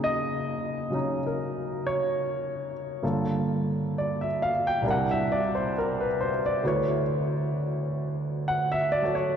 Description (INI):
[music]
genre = jazz ballad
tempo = 66 BPM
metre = 4/4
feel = swing 66% on 8ths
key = unclear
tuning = A4 = 440 Hz
[part]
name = warm grand piano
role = solo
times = 0.0-9.4 s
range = C2 to G5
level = -25 LUFS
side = equal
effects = none
[sound]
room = wet cathedral reverb, RT60 5.8 s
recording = recorded in a church or concert hall, nothing above 10.5 kHz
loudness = -25 LUFS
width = side -8 dB against mid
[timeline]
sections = 0.0-9.4 A section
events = none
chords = 0.0 F#6; 3.0 Gm7; 4.8 C9; 6.6 D6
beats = 0.32 1.22 2.12 | 3.03 3.93 4.83 5.73 | 6.63 7.54 8.44 9.34